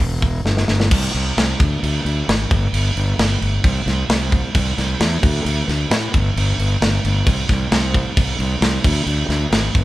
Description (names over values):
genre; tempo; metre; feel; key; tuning
hard rock; 132 BPM; 4/4; straight; unclear; A4 = 442 Hz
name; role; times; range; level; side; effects
fuzz fingered electric bass; bass; 0.0-9.8 s; E1 to A2; -19 LUFS; equal; overdrive
tight metal drum kit; drums; 0.0-9.8 s; crash cymbal, hi-hat, kick drum, snare drum; -18 LUFS; equal; none
room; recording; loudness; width
light reverb; band playing live in one room; -16 LUFS; side -16 dB against mid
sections
0.9-9.8 A section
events
drum fill 0.5-0.9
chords
none